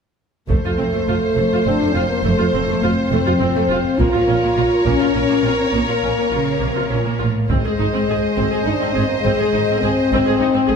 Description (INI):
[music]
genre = cinematic, epic orchestral film score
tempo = 103 BPM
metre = 3/4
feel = straight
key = unclear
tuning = A4 = 443 Hz
[part]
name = rich symphonic violin section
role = melody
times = 0.5-10.8 s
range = C5 to Eb5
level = -27 LUFS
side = left 2 dB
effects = none
[part]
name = rich studio violin section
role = second line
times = 0.5-10.8 s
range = Bb4 to C5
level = -24 LUFS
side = left 1 dB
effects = none
[part]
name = rich symphonic viola section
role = accompaniment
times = 0.5-10.7 s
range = A3 to Ab4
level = -24 LUFS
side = right 3 dB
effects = none
[part]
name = mellow French horn section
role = sustained chords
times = 0.5-10.8 s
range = Ab3 to F4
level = -19 LUFS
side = left 2 dB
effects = none
[part]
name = clear symphonic double bass section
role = bass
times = 0.5-10.7 s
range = F1 to Bb1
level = -24 LUFS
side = right 4 dB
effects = none
[part]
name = rich symphonic cello section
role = bass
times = 0.5-10.8 s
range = F2 to Db3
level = -24 LUFS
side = right 3 dB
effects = none
[part]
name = taiko ensemble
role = drums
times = 0.5-8.6 s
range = none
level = -25 LUFS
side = equal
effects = none
[sound]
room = wet recital hall reverb, RT60 1.7 s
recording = recorded in a church or concert hall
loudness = -15 LUFS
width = side -6 dB against mid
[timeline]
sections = 0.5-10.8 A section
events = none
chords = 0.5 F; 4.0 Bbm; 7.5 Ab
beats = | 0.50 1.08 1.67 | 2.25 2.83 3.41 | 3.99 4.58 5.16 | 5.74 6.33 6.92 | 7.51 8.09 8.67 | 9.25 9.83 10.41